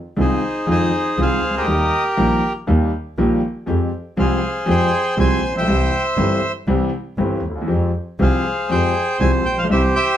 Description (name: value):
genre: tango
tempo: 120 BPM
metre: 4/4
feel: rubato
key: F minor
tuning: A4 = 439 Hz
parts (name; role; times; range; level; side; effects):
- bandoneon; melody; 0.2-10.2 s; Eb4 to Ab5; -19 LUFS; equal; none
- warm concert grand piano; accompaniment; 0.2-9.9 s; G1 to G4; -20 LUFS; left 1 dB; none
- rich double bass; bass; 0.2-9.9 s; G1 to F2; -21 LUFS; right 1 dB; none
room: moderate studio reverb, RT60 0.6 s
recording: band playing live in one room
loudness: -16 LUFS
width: side -10 dB against mid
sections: 0.0-10.2 A section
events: none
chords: 0.0 Fm7; 1.7 Eb; 3.7 Fmadd9; 5.7 C; 7.7 Fmadd9